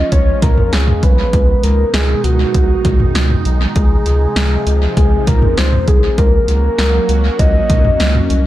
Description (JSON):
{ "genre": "synth-pop", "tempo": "99 BPM", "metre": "4/4", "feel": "straight", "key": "unclear", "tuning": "A4 = 440 Hz", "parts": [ { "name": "soft octave-layered synth lead", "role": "melody", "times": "0.0-8.3 s", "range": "Gb4 to Eb5", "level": "-18 LUFS", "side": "equal", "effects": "chorus, tape echo" }, { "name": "phased analog pad", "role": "sustained chords", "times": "0.0-8.5 s", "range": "Cb3 to Gb4", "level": "-22 LUFS", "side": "right 2 dB", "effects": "phaser, chorus" }, { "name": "round analog bass", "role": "bass", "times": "0.0-8.5 s", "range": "Cb2 to Db2", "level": "-14 LUFS", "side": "equal", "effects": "none" }, { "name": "punchy analog drum machine", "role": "drums", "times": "0.1-8.4 s", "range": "hi-hat, kick drum, snare drum, toms", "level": "-15 LUFS", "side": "equal", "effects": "tape echo" } ], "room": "digital ambience", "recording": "echo-heavy mix", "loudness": "-11 LUFS", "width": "side -14 dB against mid", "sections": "0.0-8.5 A section", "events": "none", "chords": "0.0 Db; 1.3 Abm/Db; 3.8 Fm7/Db; 6.2 Gb/Db" }